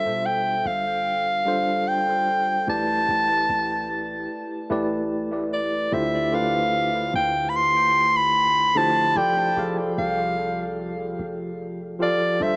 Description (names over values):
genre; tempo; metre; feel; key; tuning
contemporary R&B; 74 BPM; 4/4; straight; D dorian; A4 = 440 Hz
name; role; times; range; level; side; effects
mellow soprano saxophone; melody; 0.0-12.6 s; D5 to C6; -24 LUFS; equal; tape echo
tine electric piano; accompaniment; 0.0-12.6 s; D3 to F5; -29 LUFS; equal; tape echo
clean 808-style bass; bass; 0.0-12.6 s; F1 to F3; -41 LUFS; equal; none
room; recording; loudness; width
light reverb, studio reverb; echo-heavy mix, small speaker sound; -23 LUFS; mono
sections
0.0-5.9 A section; 5.9-12.6 B section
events
none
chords
0.0 G9sus4; 2.7 A7sus4; 5.9 Dm11; 9.2 F69